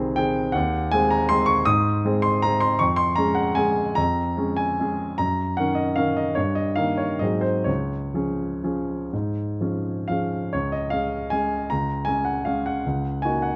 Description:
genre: classical, piano waltz.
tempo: 121-166 BPM.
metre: 3/4.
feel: rubato.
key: Db major.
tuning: A4 = 441 Hz.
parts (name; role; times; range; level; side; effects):
warm grand piano; solo; 0.0-13.6 s; C2 to Eb6; -23 LUFS; equal; none.
room: light reverb.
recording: close, detailed microphones.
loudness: -23 LUFS.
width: mono.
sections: 0.0-10.5 A section; 10.5-13.6 B section.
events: none.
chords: 0.0 Ab/C; 0.5 Ab7/Eb; 2.8 Db/F; 5.2 Ebm7/Gb; 6.4 Eb/G; 7.2 Ab7; 7.7 Db; 12.8 Ebm7/Db.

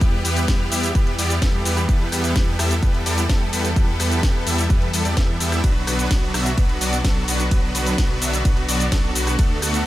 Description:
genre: EDM, festival progressive house.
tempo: 128 BPM.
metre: 4/4.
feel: straight.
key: E minor.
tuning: A4 = 445 Hz.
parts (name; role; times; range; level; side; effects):
clear symphonic string section; sustained chords; 0.0-9.9 s; D3 to A4; -28 LUFS; left 1 dB; sidechain pumping.
supersaw chords; riff; 0.0-9.8 s; F#3 to E5; -24 LUFS; right 1 dB; sidechain pumping, digital delay.
wide detuned saw bass; bass; 0.0-9.8 s; B1 to E2; -24 LUFS; equal; chorus, sidechain pumping.
electronic kick drum; drums; 0.0-9.5 s; none; -19 LUFS; equal; none.
house drum kit; drums; 0.0-9.8 s; hi-hat, ride cymbal, rim click, shaker, snare drum; -26 LUFS; left 1 dB; none.
room: digital ambience.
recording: none.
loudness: -17 LUFS.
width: side -15 dB against mid.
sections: 0.0-9.9 A section.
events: none.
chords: 0.0 Em; 5.6 Bm.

